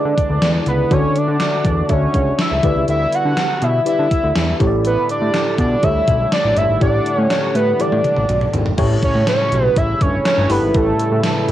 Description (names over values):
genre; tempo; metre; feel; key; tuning
1980s-style pop; 122 BPM; 4/4; straight; unclear; A4 = 440 Hz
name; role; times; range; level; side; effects
fat analog lead; melody; 0.0-11.5 s; A4 to F#5; -18 LUFS; right 1 dB; cassette tape
mellow FM electric piano; accompaniment; 0.0-11.5 s; A2 to E5; -22 LUFS; left 1 dB; chorus, phaser, cassette tape
chorused pulse-width pad; sustained chords; 0.0-11.5 s; C#3 to F#5; -25 LUFS; left 1 dB; cassette tape
fat analog bass; bass; 0.1-11.5 s; G1 to D3; -19 LUFS; equal; none
gated 80s digital drum machine; drums; 0.2-11.5 s; crash cymbal, hi-hat, kick drum, snare drum, toms; -20 LUFS; equal; gated reverb, gated reverb snare, overdrive, cassette tape
room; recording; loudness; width
moderate small room reverb, RT60 0.6 s; home recording on cassette; -14 LUFS; side -12 dB against mid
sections
0.0-8.8 A section; 8.8-11.5 B section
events
drum fill 7.8-8.8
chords
0.0 E7; 0.9 Dmaj7; 2.6 G6; 4.6 A7sus4; 8.8 A7